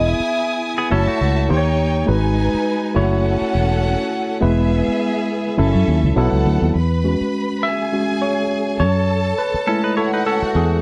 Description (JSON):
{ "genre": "lush 1970s-style soul", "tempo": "103 BPM", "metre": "4/4", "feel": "swing 54% on 16ths", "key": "unclear", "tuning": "A4 = 443 Hz", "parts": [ { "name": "vibraphone with soft mallets", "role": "melody", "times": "0.0-0.6 s", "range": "E5", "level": "-24 LUFS", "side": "equal", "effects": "none" }, { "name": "rich studio violin section", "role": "second line", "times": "0.0-10.8 s", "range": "B3 to D#6", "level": "-27 LUFS", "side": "equal", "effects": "none" }, { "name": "tine electric piano", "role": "accompaniment", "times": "0.0-10.8 s", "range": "F#3 to E5", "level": "-22 LUFS", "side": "equal", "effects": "overdrive" }, { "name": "fingered electric bass", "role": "bass", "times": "0.0-10.8 s", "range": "E1 to F#2", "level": "-20 LUFS", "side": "equal", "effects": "none" }, { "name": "direct-recorded clean electric guitar", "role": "riff", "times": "0.8-1.5, 9.7-10.8 s", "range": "A3 to C#5", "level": "-25 LUFS", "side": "equal", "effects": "none" } ], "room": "small room reverb", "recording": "dry, close 1970s-style studio recording", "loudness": "-18 LUFS", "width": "mono", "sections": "0.0-6.8 A section; 6.8-10.8 B section", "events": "tine electric piano solo 6.8-10.8", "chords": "0.0 Emaj7; 0.9 F#m7; 1.5 D#7; 2.1 G#m7; 3.0 F#m7; 4.4 E; 5.6 F#m7; 6.2 B7sus4; 6.8 E6; 8.8 F#m7", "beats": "0.33 0.92 1.50 | 2.08 2.67 3.25 3.84 | 4.42 5.01 5.59 6.17 | 6.76 7.34 7.93 8.51 | 9.09 9.68 10.26" }